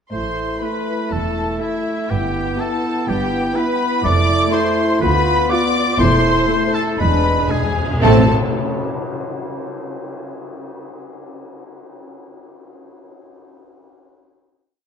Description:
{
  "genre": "classical, dramatic, fast romantic movement for symphony orchestra",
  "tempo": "121 BPM",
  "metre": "4/4",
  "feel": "rubato",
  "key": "A minor",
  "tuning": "A4 = 440 Hz",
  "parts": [
    { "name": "rich symphonic violin section", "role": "melody", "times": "0.1-8.3 s", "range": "E5 to D6", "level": "-24 LUFS", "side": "left 3 dB", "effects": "none" },
    { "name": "clear oboe", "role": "second line", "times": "0.1-8.2 s", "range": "E4 to D5", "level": "-26 LUFS", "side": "right 1 dB", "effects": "none" },
    { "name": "mellow clarinet", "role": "second line", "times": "0.1-8.2 s", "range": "C4 to F4", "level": "-26 LUFS", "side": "left 1 dB", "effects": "none" },
    { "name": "mellow hollow silver concert flute", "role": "second line", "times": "0.1-8.3 s", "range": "E5 to D6", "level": "-25 LUFS", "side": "left 1 dB", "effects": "none" },
    { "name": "rich studio violin section", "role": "second line", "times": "0.1-8.3 s", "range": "E4 to D5", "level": "-27 LUFS", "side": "left 3 dB", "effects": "none" },
    { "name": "warm bassoon", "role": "accompaniment", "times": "0.1-8.2 s", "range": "G#3 to B3", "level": "-26 LUFS", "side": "right 4 dB", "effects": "none" },
    { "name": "dark French horn section", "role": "sustained chords", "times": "0.1-8.3 s", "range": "G#3 to F4", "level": "-24 LUFS", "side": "left 3 dB", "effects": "none" },
    { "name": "rich symphonic cello section", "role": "bass", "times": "0.1-8.3 s", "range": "D2 to A2", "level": "-22 LUFS", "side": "right 2 dB", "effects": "none" },
    { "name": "rich symphonic double bass section", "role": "bass", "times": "0.1-8.3 s", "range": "E1 to D2", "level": "-22 LUFS", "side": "right 2 dB", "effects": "none" },
    { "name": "warm symphonic viola section", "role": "accompaniment", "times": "0.6-8.3 s", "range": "G#3 to F4", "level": "-26 LUFS", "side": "right 2 dB", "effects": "none" },
    { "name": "cymbal swell and tam-tam", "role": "percussion", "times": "4.0-10.0 s", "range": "none", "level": "-29 LUFS", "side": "left 2 dB", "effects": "none" },
    { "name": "timpani", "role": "percussion", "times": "6.0-8.3 s", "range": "E2 to A2", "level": "-25 LUFS", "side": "left 1 dB", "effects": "none" }
  ],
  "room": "wet scoring stage reverb, RT60 1.8 s",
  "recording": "dark, warm production",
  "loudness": "-15 LUFS",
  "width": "side -7 dB against mid",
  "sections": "0.1-8.0 A section; 8.0-10.1 final chord",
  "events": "timpani fill 7.0-8.0; band accent 8.0-8.5",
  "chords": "0.1 Am; 2.1 Em/G; 4.0 Fmaj7; 5.0 Bdim/D; 6.0 Am/E; 7.0 E7; 8.0 Am"
}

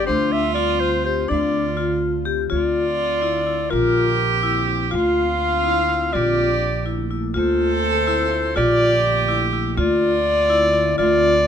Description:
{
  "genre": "contemporary instrumental, chamber music in an uneven meter",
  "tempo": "248 BPM (eighths)",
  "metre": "5/8",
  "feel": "straight",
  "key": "D minor",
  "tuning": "A4 = 440 Hz",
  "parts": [
    { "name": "breathy clarinet", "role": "melody", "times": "0.0-11.5 s", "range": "Bb4 to F5", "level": "-21 LUFS", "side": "left 2 dB", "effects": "none" },
    { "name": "rich cello", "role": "second line", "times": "0.0-11.5 s", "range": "F4 to A4", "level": "-24 LUFS", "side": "right 5 dB", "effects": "none" },
    { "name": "glassy FM pad", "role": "sustained chords", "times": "0.0-11.5 s", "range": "D3 to E5", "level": "-30 LUFS", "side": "left 1 dB", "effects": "ensemble chorus, built-in reverb" },
    { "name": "upright bass", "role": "bass", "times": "0.0-11.5 s", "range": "Bb1 to D2", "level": "-26 LUFS", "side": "right 3 dB", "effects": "none" },
    { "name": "vibraphone with medium mallets", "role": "arpeggios", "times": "0.1-11.3 s", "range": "D4 to G4", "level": "-22 LUFS", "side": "left 3 dB", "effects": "none" }
  ],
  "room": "light reverb",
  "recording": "close, detailed microphones",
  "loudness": "-17 LUFS",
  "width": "side -8 dB against mid",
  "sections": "0.0-2.5 A section; 2.5-11.5 B section",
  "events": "none",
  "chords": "0.1 Dm7; 2.5 Dm9; 3.7 Bbadd9; 4.9 Dm9; 6.1 Bbmaj7#11; 7.4 Dm9; 8.6 Bbmaj7#11; 9.8 Dm9"
}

